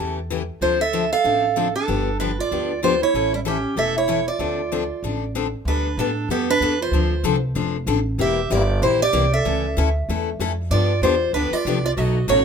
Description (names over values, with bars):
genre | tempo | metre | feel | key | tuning
acoustic string swing (jazz manouche) | 190 BPM | 4/4 | swing 60% on 8ths | D minor | A4 = 440 Hz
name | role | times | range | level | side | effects
picked steel-string acoustic guitar | melody | 0.0-12.4 s | E4 to F5 | -22 LUFS | right 2 dB | none
breathy clarinet | second line | 0.0-12.4 s | G3 to A4 | -27 LUFS | right 5 dB | none
picked steel-string acoustic guitar | accompaniment | 0.0-12.4 s | B2 to A4 | -25 LUFS | left 8 dB | none
upright bass | bass | 0.0-12.4 s | E1 to A2 | -24 LUFS | equal | none
room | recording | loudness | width
light reverb | minimal, uncompressed stereo recording | -18 LUFS | side -6 dB against mid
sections
0.0-5.7 A section; 5.7-12.4 B section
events
none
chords
0.0 A7; 0.6 Dm7; 1.9 G7; 3.1 A; 4.4 Dm7; 5.7 Gadd9; 6.9 Dm7; 8.2 Edim; 9.5 A; 10.7 G7